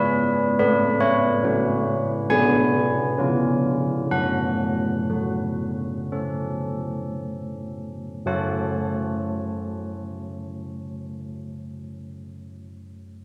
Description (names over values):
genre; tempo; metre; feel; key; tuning
classical, tune for church bells; 54-73 BPM; 4/4; straight; F# minor; A4 = 440 Hz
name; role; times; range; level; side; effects
old church bells; solo; 0.0-11.8 s; F#3 to A5; -24 LUFS; equal; none
room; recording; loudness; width
wet church reverb, RT60 2.9 s; heard from further back in the room; -23 LUFS; mono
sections
0.0-8.3 A section; 8.3-12.6 B section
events
slowing down 0.0-8.3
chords
0.0 C#7(no3)/G#; 0.6 F#m/A; 2.3 G#m7b5/B; 3.2 C#; 4.1 F#m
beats
| 0.59 1.43 2.30 3.18 | 4.11 5.09 6.10 7.16 | 8.26 9.35 10.43 11.52